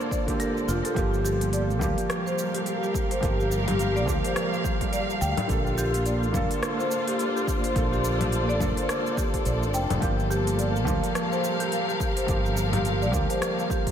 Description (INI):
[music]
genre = organic downtempo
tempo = 106 BPM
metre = 4/4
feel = swing 59% on 16ths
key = G minor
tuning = A4 = 440 Hz
[part]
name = felt-muted upright piano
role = accompaniment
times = 0.0-13.9 s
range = D3 to A4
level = -30 LUFS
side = right 2 dB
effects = sidechain pumping, ping-pong delay
[part]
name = dark studio string section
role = sustained chords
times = 0.0-13.9 s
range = G3 to F5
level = -30 LUFS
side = left 1 dB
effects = sidechain pumping
[part]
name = organic electronic drum kit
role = drums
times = 0.0-13.9 s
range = congas, hi-hat, rim click, shaker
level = -33 LUFS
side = left 1 dB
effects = none
[part]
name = marimba with medium mallets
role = arpeggios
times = 0.1-13.8 s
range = F4 to G5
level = -31 LUFS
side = left 1 dB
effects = ping-pong delay
[part]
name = electronic kick drum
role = drums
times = 0.1-13.9 s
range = none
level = -29 LUFS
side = equal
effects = overdrive
[part]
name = fretless electric bass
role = bass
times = 0.7-13.2 s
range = F1 to D2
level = -27 LUFS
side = equal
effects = wide subtle chorus, sidechain pumping
[sound]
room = moderate plate reverb, RT60 2.3 s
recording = dreamy mix soaked in reverb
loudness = -23 LUFS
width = side -9 dB against mid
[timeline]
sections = 1.0-13.9 A section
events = none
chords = 0.0 Bbmaj7; 1.0 Gm7; 5.5 Bbmaj7; 10.0 Gm7